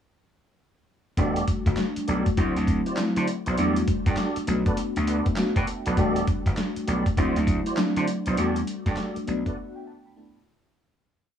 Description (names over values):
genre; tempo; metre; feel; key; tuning
R&B, new jack swing; 100 BPM; 4/4; swing 62% on 16ths; E minor; A4 = 440 Hz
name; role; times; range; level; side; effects
FM electric piano with soft pad layer; accompaniment; 1.2-10.8 s; F3 to B5; -27 LUFS; left 1 dB; chorus, tremolo
tonewheel organ; stabs; 1.2-9.6 s; E4 to D5; -31 LUFS; right 2 dB; chorus vibrato, slow rotary speaker, tape echo
gritty slap bass; bass; 1.2-9.4 s; E1 to D3; -26 LUFS; equal; overdrive
dusty soul sampler-style drum kit; drums; 1.2-9.6 s; handclaps, hi-hat, kick drum, snare drum; -26 LUFS; equal; overdrive
room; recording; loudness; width
moderate studio reverb, RT60 0.5 s; none; -22 LUFS; side -9 dB against mid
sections
1.2-10.8 verse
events
FM electric piano fill 4.8-6.0, 9.0-10.8; fade-out 8.4-10.8; break 9.6-10.8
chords
1.2 Em11; 2.4 D9; 3.6 Em11; 7.2 D9; 8.4 Em11